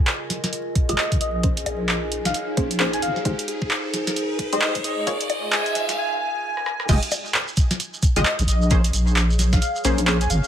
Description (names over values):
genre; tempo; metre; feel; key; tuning
UK garage, two-step garage; 132 BPM; 4/4; swing 60% on 16ths; F minor; A4 = 441 Hz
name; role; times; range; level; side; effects
warm analog pad; sustained chords; 0.0-6.0 s; Ab4 to Ab5; -34 LUFS; left 5 dB; chorus, sidechain pumping
riser; sound effects; 1.7-6.0 s; none; -30 LUFS; right 1 dB; none
warbly tape-like pad; texture; 0.0-10.5 s; Eb4 to F5; -32 LUFS; right 1 dB; chorus, built-in reverb, sidechain pumping
punchy analog drum machine; drums; 0.1-10.4 s; bongos, crash cymbal, handclaps, hi-hat, rim click, snare drum; -24 LUFS; equal; none
electronic kick drum; drums; 0.8-9.6 s; none; -20 LUFS; equal; none
airy dreamy lead; melody; 0.9-10.5 s; Eb5 to Ab5; -29 LUFS; left 1 dB; chorus, dub echo
punchy chord stab; stabs; 0.9-10.2 s; Ab3 to Eb5; -27 LUFS; left 1 dB; chorus, dub echo
deep soft wobble bass; bass; 0.9-10.4 s; F1 to Db2; -22 LUFS; equal; chorus
shekere; percussion; 6.9-10.5 s; none; -31 LUFS; right 3 dB; none
room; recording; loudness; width
light reverb, digital ambience; vinyl crackle, high-pass filter; -19 LUFS; side -10 dB against mid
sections
0.0-6.9 A section; 6.9-10.5 B section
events
build-up 0.0-6.9; filter sweep on synth stab 0.0-6.9; filter sweep on digital synth lead 0.0-6.9; filter sweep on analog synth pad 0.0-6.9; riser 1.7-6.0; break 6.0-6.9; drum fill 6.5-6.9; drop 6.9-10.5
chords
0.0 Fm7; 1.4 Bbm9; 3.0 Ab; 5.1 Db6; 6.9 Fm9; 8.7 Bbm9